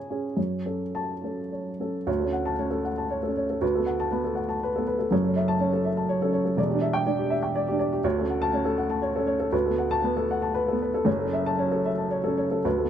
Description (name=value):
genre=neoclassical minimalist piano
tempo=104-125 BPM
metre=3/4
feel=rubato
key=unclear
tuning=A4 = 439 Hz
part: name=dark upright piano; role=solo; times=0.0-12.9 s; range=E1 to A5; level=-24 LUFS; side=equal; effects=none
room=light reverb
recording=none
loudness=-24 LUFS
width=side -9 dB against mid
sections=0.0-2.1 A section; 2.1-12.9 B section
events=none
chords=0.4 F#m; 2.1 Dmaj7; 3.6 Bm7/D; 5.1 F#m7; 6.6 Em7; 8.0 Dmaj7; 9.5 Bm7/D; 11.1 F#m7